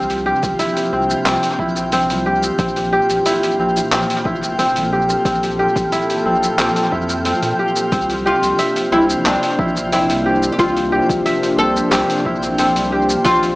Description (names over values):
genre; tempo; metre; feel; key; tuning
organic downtempo; 90 BPM; 4/4; straight; C mixolydian; A4 = 440 Hz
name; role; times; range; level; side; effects
warm analog pad; sustained chords; 0.0-13.6 s; Bb2 to C5; -23 LUFS; equal; chorus, sidechain pumping
kora; arpeggios; 0.0-13.6 s; C4 to E5; -18 LUFS; equal; analog delay
warm sub bass; bass; 0.0-13.6 s; F1 to Bb2; -26 LUFS; equal; sidechain pumping
twinkling granular texture; texture; 0.0-13.6 s; F3 to G5; -25 LUFS; equal; built-in reverb
dusty soul sampler-style drum kit; drums; 0.1-13.6 s; handclaps, hi-hat, shaker; -23 LUFS; equal; studio reverb, tape echo
electronic kick drum; drums; 0.4-13.4 s; none; -25 LUFS; equal; studio reverb
oud; melody; 8.3-13.6 s; D4 to A4; -18 LUFS; left 1 dB; analog delay
room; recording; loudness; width
wet plate reverb, RT60 2.0 s; echo-heavy mix, small speaker sound; -14 LUFS; side -21 dB against mid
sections
0.0-13.6 A section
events
none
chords
0.0 Bbmaj7; 7.9 C9sus4